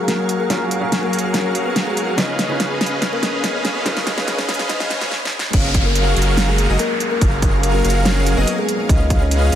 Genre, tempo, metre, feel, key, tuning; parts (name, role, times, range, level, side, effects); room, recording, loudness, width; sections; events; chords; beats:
future bass; 143 BPM; 4/4; half-time; F# major; A4 = 441 Hz
kalimba; melody; 0.0-9.5 s; G#3 to D#5; -25 LUFS; left 3 dB; sidechain pumping, tape echo
warm baby grand piano; accompaniment; 0.0-5.6 s; C#3 to E#5; -29 LUFS; right 1 dB; sidechain pumping, dub echo
shimmering ambient pad; sustained chords; 0.0-9.6 s; C#3 to C#6; -30 LUFS; equal
supersaw chords; riff; 0.0-9.6 s; F#3 to E#5; -22 LUFS; equal; cassette tape, sidechain pumping, low-pass filter
saturated sub bass; bass; 0.0-9.6 s; F#1 to C#2; -18 LUFS; equal; sidechain pumping, high-pass filter
riser and downlifter; sound effects; 1.3-8.9 s; -28 LUFS; equal
pop drum kit; drums; 0.1-9.6 s; crash cymbal, hi-hat, snare drum; -22 LUFS; equal; studio reverb
airy dreamy lead; arpeggios; 5.5-9.6 s; D#5 to E#5; -27 LUFS; equal; chorus, sidechain pumping
electronic kick drum; drums; 5.5-9.2 s; -16 LUFS; equal; studio reverb
light reverb, digital ambience; dense, heavily limited modern master, high-pass filter; -16 LUFS; side -10 dB against mid
0.0-5.5 A section; 5.5-9.6 B section
build-up 0.0-5.5; drum fill 0.0-5.1, 5.1-5.5; filter sweep on supersaw synth 0.0-5.5; filter sweep 0.0-5.5; drop 5.5-9.6
0.0 F#maj7; 2.2 C#9; 5.5 F#maj7; 8.9 C#9
0.08 | 0.50 0.92 1.34 1.76 | 2.18 2.60 3.02 3.44 | 3.86 4.28 4.70 5.12 | 5.54 5.96 6.38 6.79 | 7.21 7.63 8.05 8.47 | 8.89 9.31